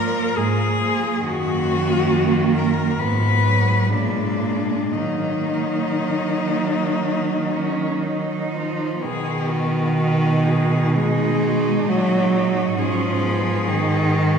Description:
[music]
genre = classical, lyrical piece for cello ensemble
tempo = 56-70 BPM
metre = 4/4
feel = rubato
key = Eb minor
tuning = A4 = 439 Hz
[part]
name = rich cello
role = melody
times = 0.0-14.4 s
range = D4 to Cb5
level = -24 LUFS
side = left 4 dB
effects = none
[part]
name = rich cello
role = second line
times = 0.0-14.4 s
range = Bb3 to Eb4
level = -26 LUFS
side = right 5 dB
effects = none
[part]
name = rich cello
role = accompaniment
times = 0.0-14.4 s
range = Eb3 to G#3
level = -22 LUFS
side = equal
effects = none
[part]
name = rich cello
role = bass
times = 0.0-14.4 s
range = Gb2 to Eb3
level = -24 LUFS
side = right 1 dB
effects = none
[sound]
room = wet church reverb, RT60 3.4 s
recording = recorded in a church or concert hall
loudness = -18 LUFS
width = side -6 dB against mid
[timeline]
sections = 0.0-9.0 A section; 9.0-14.4 B section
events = none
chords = 0.0 Bb7(no3)/Ab; 1.2 Ebm/Gb; 3.0 Fdim/Ab; 3.9 Bb7; 4.9 Ebm; 9.0 B6; 12.8 Abm

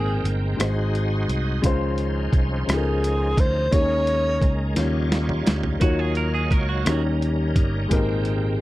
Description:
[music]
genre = slow gospel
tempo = 57 BPM (dotted quarters)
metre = 6/8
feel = straight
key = unclear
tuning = A4 = 440 Hz
[part]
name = warm alto saxophone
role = melody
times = 0.0-4.8 s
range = Ab4 to Db5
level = -24 LUFS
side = equal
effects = none
[part]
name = dark grand piano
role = accompaniment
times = 0.0-8.6 s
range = Ab2 to G5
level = -26 LUFS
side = left 3 dB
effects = none
[part]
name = bright tonewheel organ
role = sustained chords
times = 0.0-8.6 s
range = F3 to G5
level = -30 LUFS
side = right 2 dB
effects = fast rotary speaker, overdrive, chorus vibrato
[part]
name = fingered electric bass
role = bass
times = 0.0-8.6 s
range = G1 to Eb2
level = -24 LUFS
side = equal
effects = none
[part]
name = boom bap sampler-style drum kit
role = drums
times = 0.3-8.4 s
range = hi-hat, kick drum, rim click, snare drum, toms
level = -22 LUFS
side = equal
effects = none
[part]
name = clean electric guitar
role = second line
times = 5.8-7.0 s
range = Gb4 to Bb4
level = -29 LUFS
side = right 6 dB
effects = slapback echo
[sound]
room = little or no reverb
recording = dry, close 1970s-style studio recording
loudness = -20 LUFS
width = side -16 dB against mid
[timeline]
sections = 0.0-8.6 A section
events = drum fill 4.8-5.8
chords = 0.0 Abmaj9; 0.6 Ab7; 1.6 Dbmaj9; 3.7 Eb7sus4; 4.8 Eb9; 5.8 Ebm9; 6.9 Eb7; 7.9 Abmaj9

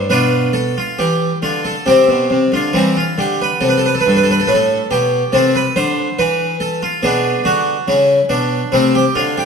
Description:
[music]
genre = classical, baroque-style suite movement for harpsichord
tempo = 70 BPM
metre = 4/4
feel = rubato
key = unclear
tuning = A4 = 441 Hz
[part]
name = harpsichord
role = solo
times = 0.0-9.5 s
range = G2 to C5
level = -13 LUFS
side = equal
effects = none
[sound]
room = wet scoring stage reverb, RT60 1.6 s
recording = minimal, uncompressed stereo recording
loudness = -13 LUFS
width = side -6 dB against mid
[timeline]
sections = 0.0-9.5 A section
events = none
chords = 0.1 Bdim; 1.9 C; 3.6 Am; 7.0 Bm69; 8.7 Am/C

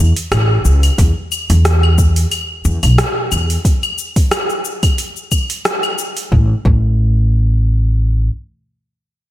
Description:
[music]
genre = sunset chillout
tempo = 90 BPM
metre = 4/4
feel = swing 54% on 16ths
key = unclear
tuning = A4 = 437 Hz
[part]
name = upright bass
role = bass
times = 0.0-8.3 s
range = A1 to E2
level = -12 LUFS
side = equal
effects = tube saturation
[part]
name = smooth R&B drum kit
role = drums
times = 0.2-6.3 s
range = claves, hi-hat, rim click, shaker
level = -18 LUFS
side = equal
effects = none
[part]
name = electronic kick drum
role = drums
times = 1.0-6.9 s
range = none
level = -14 LUFS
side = equal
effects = none
[sound]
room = light reverb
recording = none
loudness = -12 LUFS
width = side -14 dB against mid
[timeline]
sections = 0.0-6.3 A section; 6.3-9.0 B section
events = none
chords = none

